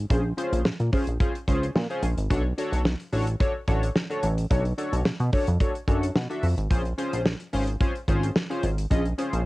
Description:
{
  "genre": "early-eighties boogie funk",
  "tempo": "109 BPM",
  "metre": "4/4",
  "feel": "straight",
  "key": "unclear",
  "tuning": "A4 = 440 Hz",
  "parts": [
    { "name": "chorused synth bass", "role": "bass", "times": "0.0-9.4 s", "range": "Ab1 to B2", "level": "-25 LUFS", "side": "equal", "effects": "none" },
    { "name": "chorused polysynth", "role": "accompaniment", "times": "0.1-9.4 s", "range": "Db4 to E5", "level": "-28 LUFS", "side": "left 1 dB", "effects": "cassette tape" },
    { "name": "damped 70s drum kit", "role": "drums", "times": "0.1-9.5 s", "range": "hi-hat, kick drum, snare drum", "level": "-26 LUFS", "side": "equal", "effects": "cassette tape" }
  ],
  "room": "little or no reverb",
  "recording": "home recording on cassette",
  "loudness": "-23 LUFS",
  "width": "side -20 dB against mid",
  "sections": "0.0-9.5 A section",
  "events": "none",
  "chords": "0.0 Bbm9; 2.3 Bm9; 6.7 Bbm9",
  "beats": "| 0.10 0.65 1.20 1.75 | 2.31 2.85 3.41 3.96 | 4.51 5.06 5.61 6.16 | 6.71 7.26 7.81 8.36 | 8.91"
}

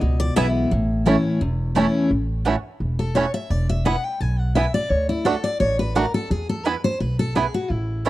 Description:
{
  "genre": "bluegrass",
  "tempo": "172 BPM",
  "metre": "4/4",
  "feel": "swing 54% on 8ths",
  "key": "A major",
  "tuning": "A4 = 440 Hz",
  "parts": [
    { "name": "picked steel-string acoustic guitar", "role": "melody", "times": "0.0-0.5 s", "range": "D5 to E5", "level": "-28 LUFS", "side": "left 2 dB", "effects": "none" },
    { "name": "picked steel-string acoustic guitar", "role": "accompaniment", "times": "0.0-8.1 s", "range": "E2 to G#5", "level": "-22 LUFS", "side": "left 2 dB", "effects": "none" },
    { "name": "upright bass", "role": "bass", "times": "0.0-8.1 s", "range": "E1 to E2", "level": "-23 LUFS", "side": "equal", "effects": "none" },
    { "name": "bluegrass banjo", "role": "arpeggios", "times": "0.4-8.1 s", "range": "A3 to F#4", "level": "-23 LUFS", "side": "right 4 dB", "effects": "none" },
    { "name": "mandolin", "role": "stabs", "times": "0.4-8.1 s", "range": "A3 to A5", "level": "-27 LUFS", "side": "right 6 dB", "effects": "none" }
  ],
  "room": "small room ambience",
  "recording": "dry, close 1970s-style studio recording",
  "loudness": "-19 LUFS",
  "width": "side -16 dB against mid",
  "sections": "0.0-2.1 A section; 2.1-8.1 B section",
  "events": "steel-string acoustic guitar solo 2.1-8.1",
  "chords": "0.0 E; 0.7 A; 2.1 A6; 3.5 E; 4.9 D; 6.3 E",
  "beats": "0.01 0.36 | 0.71 1.06 1.41 1.76 | 2.11 2.46 2.81 3.16 | 3.51 3.86 4.21 4.55 | 4.91 5.25 5.60 5.95 | 6.30 6.65 7.00 7.35 | 7.70 8.05"
}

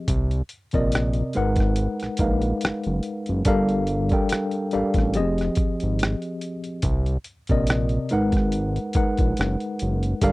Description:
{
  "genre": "R&B, neo-soul",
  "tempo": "71 BPM",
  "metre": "4/4",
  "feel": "swing 55% on 16ths",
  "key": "unclear",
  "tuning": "A4 = 438 Hz",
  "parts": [
    { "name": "tine electric piano", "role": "accompaniment", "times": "0.0-10.3 s", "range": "C3 to G5", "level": "-24 LUFS", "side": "left 1 dB", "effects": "medium stereo tremolo" },
    { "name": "fat analog bass", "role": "bass", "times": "0.1-10.3 s", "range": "F1 to C2", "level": "-24 LUFS", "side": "equal", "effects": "none" },
    { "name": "boom bap sampler-style drum kit", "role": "drums", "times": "0.1-10.3 s", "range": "hi-hat, kick drum, rim click", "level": "-24 LUFS", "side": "equal", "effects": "none" }
  ],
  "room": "little or no reverb",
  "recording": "dry, close 1970s-style studio recording",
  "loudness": "-21 LUFS",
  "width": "side -20 dB against mid",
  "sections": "0.0-10.3 A section",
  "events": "none",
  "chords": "0.1 Cm9; 1.3 Abm9; 3.5 Gm9; 5.1 Fm9; 6.8 Cm9; 8.1 Abm9",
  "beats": "| 0.07 0.92 1.76 2.61 | 3.45 4.30 5.14 5.99 | 6.83 7.68 8.52 9.37 | 10.21"
}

